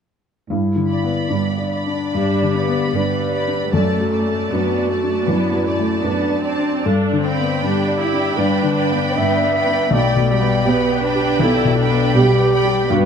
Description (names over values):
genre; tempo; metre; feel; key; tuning
classical; 68-82 BPM; 4/4; rubato; G major; A4 = 439 Hz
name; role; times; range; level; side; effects
clear baby grand piano; melody; 0.5-13.1 s; B1 to D5; -20 LUFS; left 4 dB; none
dark clarinet; second line; 0.5-13.1 s; D4 to E5; -22 LUFS; equal; none
warm symphonic cello section; bass; 0.5-13.1 s; F#2 to B2; -24 LUFS; right 4 dB; none
rich symphonic violin section; melody; 0.9-12.9 s; A5 to B5; -29 LUFS; right 2 dB; none
warm symphonic violin section; second line; 0.9-12.9 s; D5 to G5; -25 LUFS; equal; none
warm studio viola section; accompaniment; 2.1-13.1 s; G3 to E4; -23 LUFS; right 4 dB; none
room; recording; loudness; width
moderate scoring stage reverb, RT60 1.9 s; close, detailed microphones; -15 LUFS; side -7 dB against mid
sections
0.5-13.1 A section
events
none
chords
0.5 G; 3.7 D/F#; 6.8 G; 9.9 G/B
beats
| 0.51 1.31 2.17 2.96 | 3.74 4.53 5.29 6.04 | 6.84 7.61 8.36 9.16 | 9.93 10.68 11.43 12.17 | 12.91